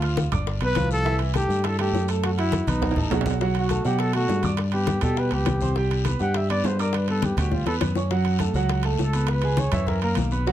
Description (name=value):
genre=Afro-Cuban jazz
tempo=204 BPM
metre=4/4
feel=straight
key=B minor from 3.4 s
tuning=A4 = 440 Hz
part: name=breathy trumpet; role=melody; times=0.0-10.2 s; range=D#4 to F#5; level=-28 LUFS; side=equal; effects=none
part: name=warm baby grand piano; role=accompaniment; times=0.0-10.5 s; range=E3 to F#6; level=-28 LUFS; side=right 4 dB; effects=none
part: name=picked electric bass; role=bass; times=0.0-10.5 s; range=G1 to B2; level=-24 LUFS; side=left 1 dB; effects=none
part: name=bongos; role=percussion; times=0.0-10.5 s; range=none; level=-32 LUFS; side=left 7 dB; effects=none
part: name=congas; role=percussion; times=0.0-10.5 s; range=none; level=-30 LUFS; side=left 1 dB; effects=none
part: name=timbales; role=percussion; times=0.0-10.3 s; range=none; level=-33 LUFS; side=right 9 dB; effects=none
part: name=guiro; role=percussion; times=0.2-10.5 s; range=none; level=-39 LUFS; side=left 9 dB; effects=none
room=moderate club ambience, RT60 0.5 s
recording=none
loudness=-21 LUFS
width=side -12 dB against mid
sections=0.0-3.4 A section; 3.4-10.5 B section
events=drum fill 2.7-3.4, 7.2-8.1; trumpet solo 3.4-10.5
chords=0.5 G7; 1.1 C6; 2.2 B7; 3.4 Bm7; 4.6 G; 5.8 C5; 6.9 G6; 8.1 F#m; 9.3 C#m7; 9.9 F#7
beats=0.18 0.47 0.77 | 1.06 1.35 1.65 1.94 | 2.23 2.53 2.82 3.12 | 3.41 3.70 4.00 4.29 | 4.59 4.88 5.17 5.47 | 5.76 6.05 6.35 6.64 | 6.94 7.23 7.52 7.82 | 8.11 8.40 8.70 8.99 | 9.29 9.58 9.87 10.17 | 10.46